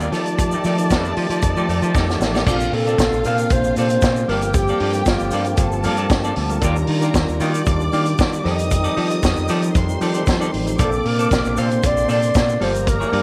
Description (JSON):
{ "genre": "disco", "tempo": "115 BPM", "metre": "4/4", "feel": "straight", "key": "Bb major", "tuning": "A4 = 440 Hz", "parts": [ { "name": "rich studio string section", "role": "second line", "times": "0.0-13.2 s", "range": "Bb3 to Eb6", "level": "-30 LUFS", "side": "equal", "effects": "none" }, { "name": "semi-hollow electric guitar", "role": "accompaniment", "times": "0.0-13.2 s", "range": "A3 to F5", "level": "-30 LUFS", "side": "equal", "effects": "subtle chorus" }, { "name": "tine electric piano", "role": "accompaniment", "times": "0.0-13.2 s", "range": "Eb3 to Eb5", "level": "-29 LUFS", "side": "equal", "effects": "none" }, { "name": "tonewheel organ", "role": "sustained chords", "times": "0.0-13.2 s", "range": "C3 to D5", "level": "-28 LUFS", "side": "equal", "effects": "slow rotary speaker" }, { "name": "modern bright fingered electric bass", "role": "bass", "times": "0.0-13.2 s", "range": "G1 to F3", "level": "-24 LUFS", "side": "equal", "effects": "none" }, { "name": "egg shaker", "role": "percussion", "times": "0.0-13.1 s", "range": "none", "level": "-39 LUFS", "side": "equal", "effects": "none" }, { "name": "vintage drum kit", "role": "drums", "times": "0.1-13.2 s", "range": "crash cymbal, hi-hat, kick drum, snare drum", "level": "-24 LUFS", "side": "equal", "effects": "none" }, { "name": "mellow reedy alto flute", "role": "melody", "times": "2.5-5.8, 10.8-13.2 s", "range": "F4 to D5", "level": "-24 LUFS", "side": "equal", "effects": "none" } ], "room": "light reverb", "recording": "none", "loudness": "-19 LUFS", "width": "mono", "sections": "0.0-2.5 A section; 2.5-13.2 B section", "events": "drum fill 1.9-2.5", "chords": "0.1 F13; 2.5 Bbmaj9; 4.3 Gm9; 6.6 Ebmaj9; 8.4 F13; 10.8 Bbmaj9; 12.6 Gm9" }